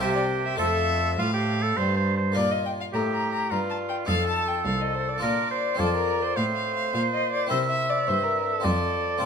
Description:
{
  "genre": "classical, baroque-style sonata movement with continuo",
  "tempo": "105 BPM",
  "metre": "3/4",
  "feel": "straight",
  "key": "Bb major",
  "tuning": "A4 = 439 Hz",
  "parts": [
    { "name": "rich violin", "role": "melody", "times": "0.0-9.3 s", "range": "A4 to Bb5", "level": "-29 LUFS", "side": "left 6 dB", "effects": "none" },
    { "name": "warm oboe", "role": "second line", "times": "0.0-9.3 s", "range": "F4 to E5", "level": "-27 LUFS", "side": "right 5 dB", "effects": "none" },
    { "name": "harpsichord", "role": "accompaniment", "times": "0.0-9.3 s", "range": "C2 to C5", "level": "-30 LUFS", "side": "left 3 dB", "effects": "none" },
    { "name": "clear cello", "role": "bass", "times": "0.0-9.3 s", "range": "C2 to C3", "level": "-29 LUFS", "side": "equal", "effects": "none" }
  ],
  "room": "moderate stone room reverb, RT60 1.3 s",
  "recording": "minimal, uncompressed stereo recording",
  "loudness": "-22 LUFS",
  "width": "side -6 dB against mid",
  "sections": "0.0-2.4 A section; 2.4-9.3 A section",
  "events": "none",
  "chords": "0.0 C5; 0.6 F; 2.4 Bb5; 4.1 F7; 5.2 Bb; 5.8 F; 7.5 C7; 8.7 F"
}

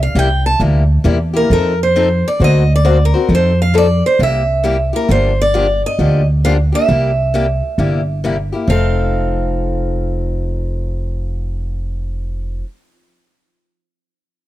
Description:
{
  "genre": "acoustic string swing (jazz manouche)",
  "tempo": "134 BPM",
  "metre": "4/4",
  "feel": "swing 64% on 8ths",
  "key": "F mixolydian",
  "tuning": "A4 = 440 Hz",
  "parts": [
    { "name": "picked steel-string acoustic guitar", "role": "melody", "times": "0.0-12.6 s", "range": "Bb4 to A5", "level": "-17 LUFS", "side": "right 2 dB", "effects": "none" },
    { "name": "upright bass", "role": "bass", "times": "0.0-12.6 s", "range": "F1 to F2", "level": "-15 LUFS", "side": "equal", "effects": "none" },
    { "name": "picked steel-string acoustic guitar", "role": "accompaniment", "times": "0.2-12.7 s", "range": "C3 to C5", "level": "-19 LUFS", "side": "left 5 dB", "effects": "none" }
  ],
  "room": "small room reverb",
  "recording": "dry, close 1970s-style studio recording",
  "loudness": "-13 LUFS",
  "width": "side -14 dB against mid",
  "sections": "0.0-5.1 A section; 5.1-8.7 B section; 8.7-12.3 C section",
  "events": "none",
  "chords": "0.0 C7; 1.5 F7; 2.4 Daug7; 3.3 F7; 4.2 C7; 5.1 Gm7; 6.9 C7; 8.7 F7"
}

